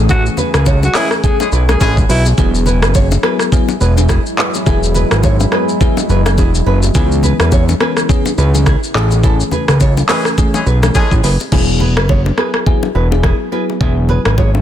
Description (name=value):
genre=afrobeats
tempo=105 BPM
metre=4/4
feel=swing 58% on 16ths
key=unclear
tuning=A4 = 440 Hz
part: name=bell-like FM electric piano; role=accompaniment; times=0.0-14.6 s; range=E3 to G#4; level=-20 LUFS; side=left 3 dB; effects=chorus, phaser
part: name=deep dark ambient pad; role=sustained chords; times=0.0-11.5 s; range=C#3 to G#4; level=-24 LUFS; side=right 1 dB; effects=chorus, built-in reverb
part: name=fat analog bass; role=bass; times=0.0-14.6 s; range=E1 to E2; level=-13 LUFS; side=equal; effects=none
part: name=growling alto saxophone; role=melody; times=0.1-2.2 s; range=E4 to G#4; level=-22 LUFS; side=equal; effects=tape echo
part: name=nylon-string guitar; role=riff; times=0.1-14.5 s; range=E4 to C#5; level=-22 LUFS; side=right 4 dB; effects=tape echo
part: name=afro-pop drum kit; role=drums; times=0.1-14.5 s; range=crash cymbal, handclaps, hi-hat, kick drum, rim click, shaker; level=-15 LUFS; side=equal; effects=overdrive
part: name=congas and bongos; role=percussion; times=0.1-14.6 s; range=none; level=-23 LUFS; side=left 4 dB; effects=none
part: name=warm horn section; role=second line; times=1.0-2.0, 10.1-11.1 s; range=E3 to G#4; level=-21 LUFS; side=left 2 dB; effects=none
room=little or no reverb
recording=dense, heavily limited modern master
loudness=-10 LUFS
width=side -11 dB against mid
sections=0.0-11.5 A section; 11.5-14.6 B section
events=band accent 0.1-2.4, 9.2-11.5; hi-hats muted 11.5-14.6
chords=0.0 Amaj7; 2.4 Eadd9; 7.0 C#m7; 8.9 Amaj7; 11.5 Eadd9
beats=| 0.09 0.66 1.24 1.81 | 2.38 2.95 3.52 4.09 | 4.66 5.24 5.81 6.38 | 6.95 7.52 8.09 8.66 | 9.24 9.81 10.38 10.95 | 11.52 12.09 12.66 13.24 | 13.81 14.38